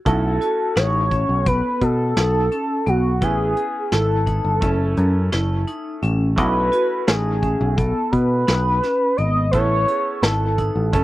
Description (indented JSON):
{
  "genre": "progressive instrumental, band music in an uneven meter",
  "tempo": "171 BPM (eighths)",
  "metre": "9/8",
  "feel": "straight",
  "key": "B mixolydian",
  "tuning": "A4 = 440 Hz",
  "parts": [
    { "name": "pulse-width lead", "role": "melody", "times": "0.1-11.0 s", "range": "F#4 to D#5", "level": "-21 LUFS", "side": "equal", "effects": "chorus" },
    { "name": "bright concert grand piano", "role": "accompaniment", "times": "0.1-11.0 s", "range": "A3 to A4", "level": "-31 LUFS", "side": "right 3 dB", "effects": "slapback echo" },
    { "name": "vibraphone with hard mallets", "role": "arpeggios", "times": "0.1-11.0 s", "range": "B3 to G#4", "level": "-27 LUFS", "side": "left 1 dB", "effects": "none" },
    { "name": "picked electric bass", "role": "bass", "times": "0.1-11.0 s", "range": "F#1 to B2", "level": "-20 LUFS", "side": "equal", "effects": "none" },
    { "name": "vintage brush drum kit", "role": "drums", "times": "0.1-11.0 s", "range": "hi-hat, kick drum, snare drum", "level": "-23 LUFS", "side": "equal", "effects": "none" }
  ],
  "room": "little or no reverb",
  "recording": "recorded outdoors, with no room sound",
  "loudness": "-17 LUFS",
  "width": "side -16 dB against mid",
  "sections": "0.1-11.0 A section",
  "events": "none",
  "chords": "0.1 B7sus4; 3.2 Amaj7; 4.6 F#m7; 6.4 B7sus4; 9.5 Amaj7"
}